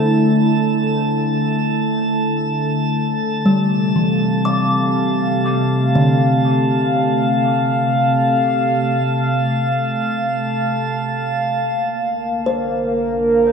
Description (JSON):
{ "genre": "ambient", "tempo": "free time", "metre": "none", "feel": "none", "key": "unclear", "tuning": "A4 = 439 Hz", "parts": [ { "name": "warbly tape-like pad", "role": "sustained chords", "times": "0.0-13.5 s", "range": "C3 to F5", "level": "-16 LUFS", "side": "equal", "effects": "chorus, built-in reverb" }, { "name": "kalimba", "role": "arpeggios", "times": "0.0-13.5 s", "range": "D3 to D6", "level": "-20 LUFS", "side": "left 1 dB", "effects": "dub echo" }, { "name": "drifting glass-harmonics texture", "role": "texture", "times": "0.0-11.5 s", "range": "A5", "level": "-25 LUFS", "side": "right 3 dB", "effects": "chorus, built-in reverb" }, { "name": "deep rumbling drone", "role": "bass", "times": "12.2-13.5 s", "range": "Bb1", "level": "-40 LUFS", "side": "equal", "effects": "built-in reverb" }, { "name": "analog drone", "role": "drone", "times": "12.2-13.5 s", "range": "D3 to D4", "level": "-37 LUFS", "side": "equal", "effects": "chorus" } ], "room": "wet spring reverb, RT60 2.5 s", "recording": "echo-heavy mix", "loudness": "-15 LUFS", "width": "side -6 dB against mid", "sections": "0.0-11.5 A section; 11.5-13.5 B section", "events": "filter sweep on ambient pad 0.0-11.5", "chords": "0.0 Dsus2; 3.5 F; 11.5 Bb5", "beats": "free time" }